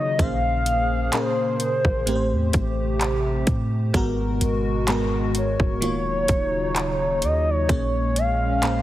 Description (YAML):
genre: contemporary R&B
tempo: 64 BPM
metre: 4/4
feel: swing 54% on 16ths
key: unclear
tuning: A4 = 440 Hz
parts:
  - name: gliding portamento lead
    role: melody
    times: 0.0-8.8 s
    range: B#4 to E#5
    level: -24 LUFS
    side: left 1 dB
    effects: chorus, digital delay
  - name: FM electric piano with soft pad layer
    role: accompaniment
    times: 0.0-8.8 s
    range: G#2 to C#5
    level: -27 LUFS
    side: equal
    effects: chorus, tremolo
  - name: hollow soft pad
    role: sustained chords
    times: 0.0-8.8 s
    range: A#2 to G#4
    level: -29 LUFS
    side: left 1 dB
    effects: chorus
  - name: clean 808-style bass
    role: bass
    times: 0.2-8.8 s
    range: D#1 to A2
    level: -26 LUFS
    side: equal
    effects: none
  - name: trap drum kit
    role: drums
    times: 0.2-8.8 s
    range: handclaps, hi-hat, kick drum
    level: -25 LUFS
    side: equal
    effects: none
room: light reverb, digital ambience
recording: heavily compressed radio sound, multiband compression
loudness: -20 LUFS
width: side -14 dB against mid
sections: 0.0-8.8 A section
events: none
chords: 0.2 A#m7; 2.1 Am7; 3.9 G#m7; 5.8 D#m7; 7.7 A#m7